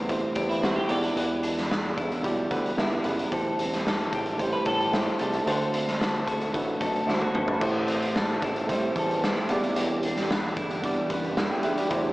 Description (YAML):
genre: indie pop, bedroom pop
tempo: 112 BPM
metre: 4/4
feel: straight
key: E minor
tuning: A4 = 440 Hz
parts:
  - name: clean electric guitar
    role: accompaniment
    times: 0.0-12.1 s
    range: A2 to B4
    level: -32 LUFS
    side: left 1 dB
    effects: wide subtle chorus, vibrato effect, slapback echo
  - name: tine electric piano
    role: accompaniment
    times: 0.0-12.1 s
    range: A3 to G5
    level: -29 LUFS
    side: right 1 dB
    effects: cassette tape, slapback echo
  - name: fat analog bass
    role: bass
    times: 0.0-12.1 s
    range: E1 to A2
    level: -33 LUFS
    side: equal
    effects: none
  - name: raw garage drum kit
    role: drums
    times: 0.1-12.0 s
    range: crash cymbal, hi-hat, kick drum, snare drum, toms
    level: -29 LUFS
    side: equal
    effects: none
  - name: semi-hollow electric guitar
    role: second line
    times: 0.5-5.4 s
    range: E4 to B4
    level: -32 LUFS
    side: equal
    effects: analog chorus, analog delay, slapback echo
  - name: ethereal airy pad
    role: sustained chords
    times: 8.8-12.1 s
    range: E3 to G4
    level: -36 LUFS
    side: right 1 dB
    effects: none
room: wet lush hall reverb, RT60 1.6 s, small room ambience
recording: big arena sound, small speaker sound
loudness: -24 LUFS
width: side -19 dB against mid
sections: 0.0-7.6 A section; 7.6-12.1 B section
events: drum fill 7.1-7.6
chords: 0.0 Am7; 0.9 Em7; 3.3 C6/E; 5.5 D7; 7.6 Am7; 9.5 Em7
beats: 0.09 0.63 | 1.17 1.70 2.24 2.78 | 3.32 3.85 4.39 4.93 | 5.47 6.00 6.54 7.08 | 7.62 8.15 8.69 9.23 | 9.77 10.30 10.84 11.38 | 11.91